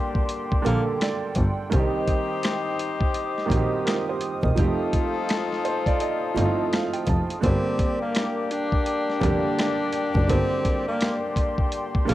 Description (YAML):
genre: hip hop, boom-bap hip-hop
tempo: 84 BPM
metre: 4/4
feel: swing 62% on 16ths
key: unclear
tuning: A4 = 440 Hz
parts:
  - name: dark grand piano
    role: accompaniment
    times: 0.0-12.1 s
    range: D3 to A5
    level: -28 LUFS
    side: right 5 dB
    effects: cassette tape
  - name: hollow soft pad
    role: sustained chords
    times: 0.0-12.1 s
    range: Bb3 to Eb6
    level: -34 LUFS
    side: right 1 dB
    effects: chorus, cassette tape
  - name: warm horn section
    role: stabs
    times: 0.0-12.1 s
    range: Bb3 to C5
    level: -29 LUFS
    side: left 6 dB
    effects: cassette tape, analog delay
  - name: dusty soul sampler-style drum kit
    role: drums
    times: 0.2-12.1 s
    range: hi-hat, kick drum, rim click, snare drum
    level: -25 LUFS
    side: equal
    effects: cassette tape
  - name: breathy tenor saxophone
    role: melody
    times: 0.6-0.8, 7.4-12.1 s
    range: Bb3 to D4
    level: -28 LUFS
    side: equal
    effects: cassette tape, analog delay
  - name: clear double bass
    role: bass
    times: 0.7-12.1 s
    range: E1 to C2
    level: -25 LUFS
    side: equal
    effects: none
room: studio reverb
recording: home recording on cassette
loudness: -21 LUFS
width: side -15 dB against mid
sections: 0.0-12.1 A section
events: none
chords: 0.0 Gm; 1.7 Cm; 4.6 F7; 7.4 Gm